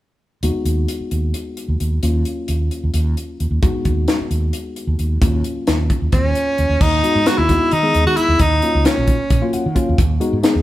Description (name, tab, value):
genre	electric jazz fusion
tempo	264 BPM (eighths)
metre	7/8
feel	straight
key	Eb minor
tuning	A4 = 440 Hz
part	tine electric piano	accompaniment	0.4-10.6 s	Gb3 to Gb5	-24 LUFS	left 2 dB	none
part	fretless electric bass	bass	0.4-10.6 s	Bb1 to D#3	-19 LUFS	right 1 dB	none
part	crisp fusion drum kit	drums	0.4-10.5 s	crash cymbal, hi-hat, kick drum, snare drum	-19 LUFS	equal	none
part	edgy tenor saxophone	melody	6.1-9.5 s	Db4 to F#4	-17 LUFS	equal	none
room	moderate stone room reverb, RT60 1.2 s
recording	band playing live in one room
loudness	-15 LUFS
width	side -15 dB against mid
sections	0.4-6.8 A section; 6.8-10.6 B section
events	tine electric piano fill 9.3-10.0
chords	0.4 B6/D#; 2.0 Ebm9; 3.6 B6/D#; 5.2 Ebm9; 6.8 Emaj9/D#; 8.4 Ebm9; 10.0 B6/D#